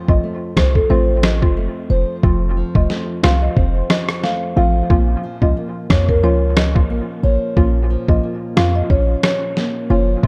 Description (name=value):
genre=dancehall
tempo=90 BPM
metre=4/4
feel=swing 56% on 16ths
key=Bb harmonic minor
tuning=A4 = 440 Hz
part: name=hollow square pluck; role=accompaniment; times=0.0-10.3 s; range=F3 to F4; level=-26 LUFS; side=equal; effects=chorus, dub echo
part: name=nylon-string guitar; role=arpeggios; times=0.0-10.3 s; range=F2 to Db4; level=-28 LUFS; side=equal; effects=none
part: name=marimba with soft mallets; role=melody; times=0.1-10.1 s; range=A4 to F5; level=-25 LUFS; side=equal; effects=dub echo
part: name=warm 808-style bass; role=bass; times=0.1-10.3 s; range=F1 to F2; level=-19 LUFS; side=equal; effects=none
part: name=lo-fi sampler-style drum kit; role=drums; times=0.1-10.3 s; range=kick drum, rim click, snare drum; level=-19 LUFS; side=equal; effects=none
room=light reverb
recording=echo-heavy mix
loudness=-17 LUFS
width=mono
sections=0.0-10.3 A section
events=none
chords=0.0 F; 4.9 Bbm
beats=0.23 0.90 1.57 | 2.23 2.90 3.57 4.23 | 4.90 5.57 6.23 6.90 | 7.57 8.23 8.90 9.57 | 10.23